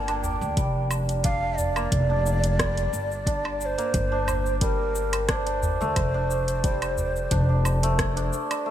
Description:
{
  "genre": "organic downtempo",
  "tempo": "89 BPM",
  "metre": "4/4",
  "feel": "swing 54% on 16ths",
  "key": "G minor",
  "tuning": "A4 = 438 Hz",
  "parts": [
    { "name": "breathy mellow ney", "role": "melody", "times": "0.0-8.7 s", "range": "Bb4 to A5", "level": "-29 LUFS", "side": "right 1 dB", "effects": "ping-pong delay" },
    { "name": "santur", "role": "arpeggios", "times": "0.0-8.7 s", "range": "G3 to F4", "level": "-29 LUFS", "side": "right 2 dB", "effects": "ping-pong delay" },
    { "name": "upright bass", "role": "bass", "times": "0.0-8.3 s", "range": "F1 to D2", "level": "-26 LUFS", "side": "equal", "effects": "sidechain pumping" },
    { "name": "bronze singing bowl", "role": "texture", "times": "0.0-8.7 s", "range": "none", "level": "barely audible", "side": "none", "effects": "none" },
    { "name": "afro-pop drum kit", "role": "drums", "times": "0.1-8.6 s", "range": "cabasa, hi-hat, rim click, woodblock", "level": "-31 LUFS", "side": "right 1 dB", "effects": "overdrive, small room ambience" },
    { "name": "udu", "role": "percussion", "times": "0.2-7.1 s", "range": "none", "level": "-32 LUFS", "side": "right 1 dB", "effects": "none" },
    { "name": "electronic kick drum", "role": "drums", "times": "0.6-8.1 s", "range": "none", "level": "-27 LUFS", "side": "left 1 dB", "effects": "overdrive, small room ambience" }
  ],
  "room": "light reverb",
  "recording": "bright 1980s-style digital production",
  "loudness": "-22 LUFS",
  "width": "side -11 dB against mid",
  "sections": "0.0-8.7 A section",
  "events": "none",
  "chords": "0.0 Gm7; 3.9 Dm7"
}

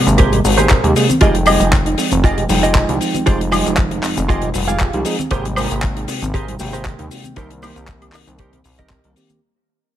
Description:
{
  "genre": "nu-disco, nu disco",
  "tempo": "117 BPM",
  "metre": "4/4",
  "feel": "swing 53% on 16ths",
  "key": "F minor",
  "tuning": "A4 = 440 Hz",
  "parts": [
    { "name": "bell-like tine electric piano", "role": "accompaniment", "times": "0.0-9.4 s", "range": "C3 to G5", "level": "-21 LUFS", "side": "right 1 dB", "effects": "sidechain pumping, dub echo" },
    { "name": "soft round pluck", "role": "arpeggios", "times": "0.0-9.3 s", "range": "Eb3 to G4", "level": "-24 LUFS", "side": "right 2 dB", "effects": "chorus, sidechain pumping, dub echo" },
    { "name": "chorused synth bass", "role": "bass", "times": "0.0-9.1 s", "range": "F1 to Eb2", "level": "-20 LUFS", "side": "equal", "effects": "tube saturation" },
    { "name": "damped 70s drum kit", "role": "drums", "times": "0.1-9.4 s", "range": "cabasa, handclaps, hi-hat, woodblock", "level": "-20 LUFS", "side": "left 3 dB", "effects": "studio reverb" },
    { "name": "congas", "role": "percussion", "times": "0.1-9.4 s", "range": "none", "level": "-27 LUFS", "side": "left 3 dB", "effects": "none" },
    { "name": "direct-recorded clean electric guitar", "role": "riff", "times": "0.2-9.1 s", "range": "Eb4 to F5", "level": "-20 LUFS", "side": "right 3 dB", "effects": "analog chorus, vintage 12-bit sampler grit, dub echo" },
    { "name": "kick drum", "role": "drums", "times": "0.2-9.0 s", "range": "none", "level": "-16 LUFS", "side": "equal", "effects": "studio reverb" }
  ],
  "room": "small room ambience",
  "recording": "none",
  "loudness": "-13 LUFS",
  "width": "side -11 dB against mid",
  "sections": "0.0-9.4 A section",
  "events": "drop 0.0-9.4; fade-out 1.2-9.4",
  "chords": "0.0 Abmaj9; 1.2 Fm9; 5.3 Abmaj9; 7.4 Cm7"
}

